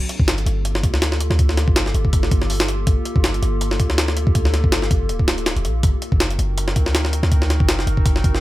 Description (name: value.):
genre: drum and bass, jungle.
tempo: 162 BPM.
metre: 4/4.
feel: swing 55% on 16ths.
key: G minor.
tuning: A4 = 440 Hz.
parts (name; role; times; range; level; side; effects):
warbly tape-like pad; sustained chords; 0.0-8.4 s; Bb3 to Bb4; -28 LUFS; left 1 dB; chorus, built-in reverb.
jungle sampler-style drum kit; drums; 0.1-8.4 s; hi-hat, kick drum, snare drum; -18 LUFS; equal; small room ambience.
warm 808-style bass; bass; 0.2-8.4 s; D1 to D2; -20 LUFS; equal; tube saturation.
room: digital ambience.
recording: none.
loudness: -16 LUFS.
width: side -16 dB against mid.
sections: 0.0-8.4 A section.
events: none.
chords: 0.0 Gm9; 5.8 D7b9b13/F#.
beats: 0.28 0.65 1.02 | 1.39 1.76 2.13 2.50 | 2.87 3.24 3.61 3.98 | 4.35 4.72 5.09 5.46 | 5.83 6.20 6.57 6.95 | 7.32 7.68 8.06.